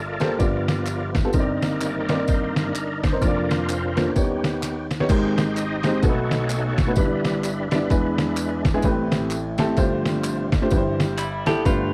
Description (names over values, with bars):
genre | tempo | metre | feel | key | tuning
uptempo gospel | 128 BPM | 4/4 | swing 60% on 8ths | C major from 5.1 s | A4 = 440 Hz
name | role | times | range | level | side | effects
warm baby grand piano | accompaniment | 0.0-11.9 s | F1 to D5 | -25 LUFS | equal | none
overdriven tonewheel organ | sustained chords | 0.0-11.9 s | F2 to Eb5 | -30 LUFS | equal | slow rotary speaker, chorus vibrato
trip hop sampler-style drum kit | drums | 0.2-11.8 s | crash cymbal, kick drum, ride cymbal, snare drum | -25 LUFS | equal | none
tambourine and handclaps | percussion | 0.2-11.8 s | none | -39 LUFS | equal | none
clean electric guitar | second line | 11.2-11.9 s | G3 to G4 | -30 LUFS | equal | none
room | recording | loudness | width
little or no reverb | dry, close 1970s-style studio recording | -22 LUFS | mono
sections
0.0-5.1 A section; 5.1-11.9 A section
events
tonewheel organ solo 0.0-5.1, 5.1-11.9; drum fill 4.6-5.1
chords
0.4 G7; 1.3 Cm9/G; 3.2 Bb/F; 4.2 Ebaug7; 5.1 Abmaj9; 6.0 B7; 7.0 Em7/G; 7.9 E7; 8.8 Am9; 9.8 G9sus4; 10.7 C/G